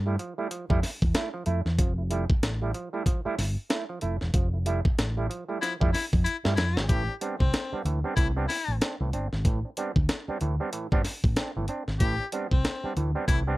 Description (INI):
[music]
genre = funk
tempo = 94 BPM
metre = 4/4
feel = swing 60% on 16ths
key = A minor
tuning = A4 = 443 Hz
[part]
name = fingered electric bass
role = bass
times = 0.0-13.6 s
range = E1 to G2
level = -28 LUFS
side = equal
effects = none
[part]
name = overdriven clav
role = stabs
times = 0.1-13.6 s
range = A2 to E4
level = -32 LUFS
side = right 4 dB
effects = auto-wah
[part]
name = breakbeat sampler-style drum kit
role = drums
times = 0.2-13.5 s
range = hi-hat, kick drum, snare drum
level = -26 LUFS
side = equal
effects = none
[part]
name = breathy baritone saxophone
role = second line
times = 5.6-13.4 s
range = C4 to G4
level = -31 LUFS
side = left 4 dB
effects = none
[sound]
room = little or no reverb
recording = none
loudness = -25 LUFS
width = side -18 dB against mid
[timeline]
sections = 0.0-6.9 A section; 6.9-13.6 B section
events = band accent 4.3-6.9; drum fill 6.3-6.9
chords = 0.0 Fmaj7; 6.9 Am11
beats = 0.51 1.15 | 1.78 2.42 3.06 3.70 | 4.34 4.98 5.62 6.25 | 6.89 7.53 8.17 8.81 | 9.45 10.09 10.73 11.37 | 12.01 12.64 13.28